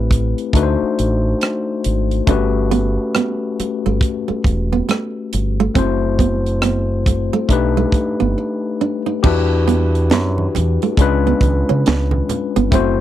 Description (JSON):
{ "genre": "R&B, neo-soul", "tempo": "69 BPM", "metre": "4/4", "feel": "swing 61% on 16ths", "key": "unclear", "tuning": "A4 = 440 Hz", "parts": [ { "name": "overdriven tine electric piano", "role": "accompaniment", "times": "0.0-13.0 s", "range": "G#3 to C5", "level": "-19 LUFS", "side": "moving between left 9 dB and left 1 dB", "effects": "auto-pan" }, { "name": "deep dub fingered electric bass", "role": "bass", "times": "0.0-13.0 s", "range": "E1 to C#3", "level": "-18 LUFS", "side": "right 1 dB", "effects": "none" }, { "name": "tight funk drum kit", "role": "drums", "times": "0.1-13.0 s", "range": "crash cymbal, hi-hat, kick drum, rim click, snare drum", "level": "-18 LUFS", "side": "right 1 dB", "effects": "none" }, { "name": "nylon-string guitar", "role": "second line", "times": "2.3-12.9 s", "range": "A3 to D#4", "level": "-20 LUFS", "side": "right 8 dB", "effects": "none" }, { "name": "congas", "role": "percussion", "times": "10.1-13.0 s", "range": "none", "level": "-26 LUFS", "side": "right 7 dB", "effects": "none" } ], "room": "little or no reverb", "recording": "dry, close 1970s-style studio recording", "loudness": "-15 LUFS", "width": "side -12 dB against mid", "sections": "0.0-9.2 A section; 9.2-13.0 B section", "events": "break 8.4-9.2", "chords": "0.0 Am9; 0.5 D7b9; 2.3 Gmaj9#11; 5.8 F#m7b5; 7.5 B7alt; 9.2 Em9; 11.0 C#7b9" }